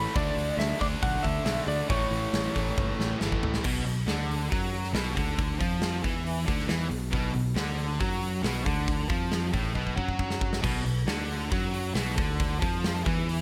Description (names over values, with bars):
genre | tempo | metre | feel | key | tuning
hard rock | 137 BPM | 4/4 | straight | B minor | A4 = 440 Hz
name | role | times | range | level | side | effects
lightly driven lead guitar | melody | 0.0-3.2 s | C#5 to B5 | -33 LUFS | equal | slapback echo
distorted electric guitar | riff | 0.0-13.4 s | A2 to D4 | -38 LUFS | equal | overdrive
high-gain distorted guitar | riff | 0.0-13.4 s | A2 to D4 | -38 LUFS | equal | distortion
overdriven semi-hollow guitar | riff | 0.0-13.4 s | A2 to D4 | -38 LUFS | equal | none
picked electric bass | bass | 0.0-13.4 s | G1 to F#2 | -34 LUFS | equal | none
big rock drum kit | drums | 0.2-13.4 s | crash cymbal, hi-hat, kick drum, snare drum, toms | -33 LUFS | equal | none
room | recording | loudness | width
little or no reverb | none | -28 LUFS | mono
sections
0.0-3.6 A section; 3.6-10.6 B section; 10.6-13.4 B section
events
drum fill 2.8-3.6, 9.8-10.6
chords
0.1 D5; 1.9 A; 3.6 Bm